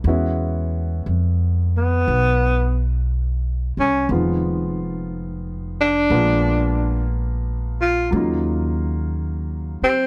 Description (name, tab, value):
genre	jazz ballad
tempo	59 BPM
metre	4/4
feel	swing 68% on 8ths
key	unclear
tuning	A4 = 440 Hz
part	clear concert grand piano	accompaniment	0.0-10.1 s	Db3 to F#4	-28 LUFS	equal	none
part	upright bass	bass	0.0-9.8 s	F1 to F2	-24 LUFS	equal	none
part	breathy tenor saxophone	melody	1.8-10.1 s	B3 to F4	-21 LUFS	equal	none
room	little or no reverb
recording	close, detailed microphones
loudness	-21 LUFS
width	mono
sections	0.0-10.1 A section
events	none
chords	0.0 E69; 4.1 Fm7b5; 6.1 Bb7b9; 8.1 Ebm9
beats	| 0.04 1.06 2.07 3.08 | 4.09 5.10 6.11 7.11 | 8.12 9.13